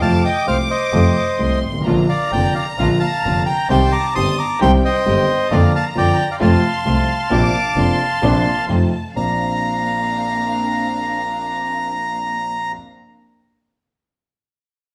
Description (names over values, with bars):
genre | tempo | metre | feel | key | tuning
tango | 132 BPM | 4/4 | rubato | Bb major | A4 = 440 Hz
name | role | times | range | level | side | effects
bandoneon | melody | 0.0-12.7 s | C5 to Eb6 | -22 LUFS | equal | none
warm chamber violin section | second line | 0.0-12.7 s | F5 to D6 | -30 LUFS | equal | none
warm concert grand piano | accompaniment | 0.0-12.7 s | F1 to G4 | -22 LUFS | equal | none
clear double bass | bass | 0.0-9.3 s | F1 to F2 | -23 LUFS | equal | none
muted studio string section | stabs | 1.9-12.7 s | A3 to G4 | -29 LUFS | equal | none
room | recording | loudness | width
wet large studio reverb, RT60 1.1 s | band playing live in one room | -18 LUFS | mono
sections
0.0-9.2 A section; 9.2-12.8 B section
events
none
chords
0.0 F; 1.9 Bb; 3.7 Cm; 5.5 Bb/F; 6.4 F; 7.3 Bbadd9; 8.7 F7; 9.2 Bbadd9